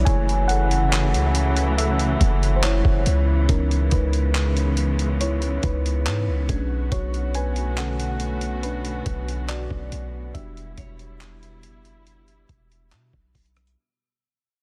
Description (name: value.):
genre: contemporary R&B.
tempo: 70 BPM.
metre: 4/4.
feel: straight.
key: unclear.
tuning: A4 = 441 Hz.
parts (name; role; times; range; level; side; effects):
mellow FM electric piano; accompaniment; 0.0-13.8 s; D3 to G#5; -30 LUFS; equal; chorus.
rich studio string section; sustained chords; 0.0-13.7 s; B2 to F#4; -31 LUFS; equal; none.
warm 808-style bass; bass; 0.0-13.8 s; E1 to B2; -25 LUFS; equal; none.
nylon-string guitar; texture; 0.0-0.9, 6.5-13.3 s; G#4 to C#5; -52 LUFS; equal; none.
dusty soul sampler-style drum kit; drums; 0.1-13.8 s; handclaps, hi-hat, kick drum, rim click; -27 LUFS; equal; none.
room: little or no reverb.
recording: dense, heavily limited modern master.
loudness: -22 LUFS.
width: mono.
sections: 0.0-13.8 A section.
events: FM electric piano solo 0.0-13.8; fade-out 2.8-13.8.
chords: 0.1 F#m7; 3.1 C#m7; 6.5 Bm7; 10.3 Em7.